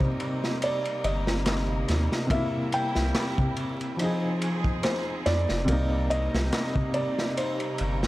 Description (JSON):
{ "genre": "trip hop", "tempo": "71 BPM", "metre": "4/4", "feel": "swing 55% on 16ths", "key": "C minor", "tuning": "A4 = 440 Hz", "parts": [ { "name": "felt-muted upright piano", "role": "melody", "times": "0.0-8.1 s", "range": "C5 to G5", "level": "-31 LUFS", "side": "equal", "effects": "tape echo" }, { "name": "felt-muted upright piano", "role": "accompaniment", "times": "0.0-8.1 s", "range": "C3 to Ab4", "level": "-31 LUFS", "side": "equal", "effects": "tremolo, tape echo" }, { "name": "muted studio string section", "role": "sustained chords", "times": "0.0-8.1 s", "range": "C3 to Ab4", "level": "-34 LUFS", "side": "right 1 dB", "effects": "none" }, { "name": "crunchy breakbeat drum kit", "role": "drums", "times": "0.0-8.1 s", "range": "kick drum, ride cymbal, snare drum", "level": "-30 LUFS", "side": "equal", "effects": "none" }, { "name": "darbuka", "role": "percussion", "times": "0.0-6.9 s", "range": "none", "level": "-35 LUFS", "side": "left 1 dB", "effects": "tape echo" }, { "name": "soft dub sub bass", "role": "bass", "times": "1.0-8.1 s", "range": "F1 to F2", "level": "-27 LUFS", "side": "equal", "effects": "none" } ], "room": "light reverb, studio reverb", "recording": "echo-heavy mix, vinyl crackle", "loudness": "-24 LUFS", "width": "side -17 dB against mid", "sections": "0.0-8.1 A section", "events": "none", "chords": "0.0 Cm7; 2.3 C7; 4.0 Fm7; 5.7 Cm7", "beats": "0.61 1.46 | 2.30 3.15 3.99 4.84 | 5.68 6.53 7.37" }